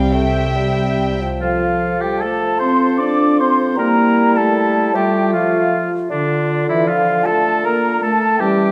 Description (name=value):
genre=classical, orchestral ballroom waltz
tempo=135-167 BPM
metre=3/4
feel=rubato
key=F major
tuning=A4 = 439 Hz
part: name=warm studio violin section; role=melody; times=0.0-1.2 s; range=G5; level=-33 LUFS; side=equal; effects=none
part: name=clear clarinet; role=second line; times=0.0-8.7 s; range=C4 to A4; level=-27 LUFS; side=equal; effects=none
part: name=warm chamber violin section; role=second line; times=0.0-1.2 s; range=E5 to G5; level=-27 LUFS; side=equal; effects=none
part: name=dark chamber viola section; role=accompaniment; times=0.0-1.2 s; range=G3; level=-30 LUFS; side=equal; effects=none
part: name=mellow bassoon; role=accompaniment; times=0.0-8.7 s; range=D3 to A3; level=-24 LUFS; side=equal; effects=none
part: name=dark studio cello section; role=bass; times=0.0-1.2 s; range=C3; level=-28 LUFS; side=equal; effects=none
part: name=warm symphonic double bass section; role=bass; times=0.0-1.2 s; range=C2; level=-25 LUFS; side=equal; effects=none
part: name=mellow hollow flute section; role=second line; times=1.4-8.7 s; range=D5 to D6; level=-22 LUFS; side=equal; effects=none
part: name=warm oboe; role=second line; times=1.4-8.7 s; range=D4 to D5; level=-24 LUFS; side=equal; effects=none
part: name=dark French horn section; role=sustained chords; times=1.4-8.7 s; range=D3 to D4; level=-21 LUFS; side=equal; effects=none
room=wet scoring stage reverb, RT60 1.8 s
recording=none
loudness=-16 LUFS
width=mono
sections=0.0-1.4 A section; 1.4-8.7 B section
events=none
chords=0.1 C; 1.4 F; 3.8 Edim/G; 4.9 F; 6.1 Dm